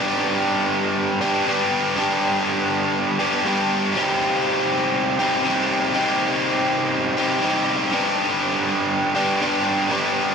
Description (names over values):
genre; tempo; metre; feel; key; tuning
rock; 121 BPM; 4/4; straight; G major; A4 = 440 Hz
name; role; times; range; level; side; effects
biting overdriven guitar; solo; 0.0-10.3 s; G2 to G4; -18 LUFS; equal; wide subtle chorus
room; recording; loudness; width
wet cathedral reverb, RT60 5.2 s; dreamy mix soaked in reverb; -18 LUFS; side -6 dB against mid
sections
0.0-10.3 A section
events
none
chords
0.0 G; 4.0 Cm; 7.9 G